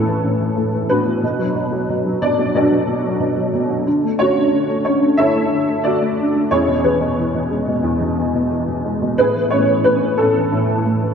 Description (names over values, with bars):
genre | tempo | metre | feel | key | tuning
acoustic folk-pop ballad | 91 BPM | 4/4 | straight | A major | A4 = 440 Hz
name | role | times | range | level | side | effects
dark upright piano | solo | 0.0-11.1 s | E2 to E5 | -15 LUFS | equal | ensemble chorus, ping-pong delay
room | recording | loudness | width
wet lush hall reverb, RT60 2.9 s | dreamy mix soaked in reverb | -15 LUFS | side -7 dB against mid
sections
0.0-11.1 A section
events
none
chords
0.0 Amaj7; 1.2 Bm7; 3.9 Dmaj7; 6.5 E; 9.2 Amaj7